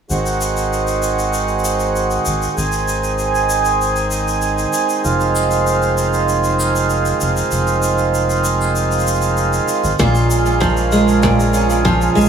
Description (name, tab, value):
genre	folktronica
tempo	97 BPM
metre	4/4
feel	straight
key	unclear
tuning	A4 = 440 Hz
part	mellow accordion	sustained chords	0.1-12.3 s	Db3 to Ab4	-17 LUFS	right 3 dB	none
part	round analog bass	bass	0.1-12.3 s	F1 to Bb1	-21 LUFS	equal	none
part	shaker	drums	0.1-12.3 s	none	-26 LUFS	left 3 dB	none
part	picked old ladder-braced acoustic guitar	arpeggios	10.0-12.3 s	Bb2 to F4	-14 LUFS	right 1 dB	digital delay
part	electronic kick drum	drums	10.0-12.0 s	none	-22 LUFS	equal	none
room	light reverb, studio reverb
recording	small room ambience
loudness	-14 LUFS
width	side -7 dB against mid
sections	0.1-12.3 A section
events	filter sweep on analog synth bass 0.1-12.3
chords	0.1 Ab7; 5.0 Fm7; 10.0 Bbm7